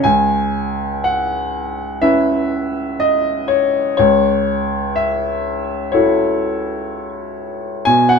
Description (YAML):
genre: classical, lyrical solo piano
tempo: 61 BPM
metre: 4/4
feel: rubato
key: C# minor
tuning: A4 = 439 Hz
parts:
  - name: clear upright piano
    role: solo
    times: 0.0-8.2 s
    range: C#2 to G#5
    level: -15 LUFS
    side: left 1 dB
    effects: none
room: light reverb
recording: close, detailed microphones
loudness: -15 LUFS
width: side -5 dB against mid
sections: 0.0-8.2 A section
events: none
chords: 0.0 C#m7; 4.0 F#m7/C#